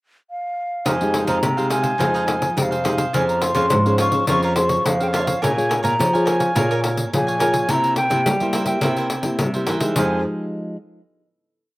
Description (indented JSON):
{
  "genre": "samba and choro",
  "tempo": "105 BPM",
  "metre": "4/4",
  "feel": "straight",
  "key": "F minor",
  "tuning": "A4 = 440 Hz",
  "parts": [
    { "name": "hollow wooden flute", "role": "melody", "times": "0.3-10.2 s", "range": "Db5 to Db6", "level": "-22 LUFS", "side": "equal", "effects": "slapback echo" },
    { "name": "cavaquinho", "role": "accompaniment", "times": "0.9-10.2 s", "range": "Eb4 to Ab5", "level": "-27 LUFS", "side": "right 3 dB", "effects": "slapback echo" },
    { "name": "nylon-string guitar", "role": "accompaniment", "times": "0.9-10.8 s", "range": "C3 to Db5", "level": "-23 LUFS", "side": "left 1 dB", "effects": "none" },
    { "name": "nylon-string guitar", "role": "bass", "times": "0.9-10.2 s", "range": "F2 to G3", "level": "-24 LUFS", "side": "right 1 dB", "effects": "none" },
    { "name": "pandeiro", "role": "percussion", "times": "0.9-10.1 s", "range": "none", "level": "-24 LUFS", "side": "left 2 dB", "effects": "none" }
  ],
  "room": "little or no reverb",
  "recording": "recorded outdoors, with no room sound",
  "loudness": "-17 LUFS",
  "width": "side -20 dB against mid",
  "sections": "0.0-0.9 pickup bar; 0.9-10.0 groove; 10.0-11.8 final chord",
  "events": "none",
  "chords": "0.0 N.C.; 0.9 Fm9; 3.1 Dbmaj7/F; 5.4 Bbm7; 7.7 C7; 10.0 Fm9"
}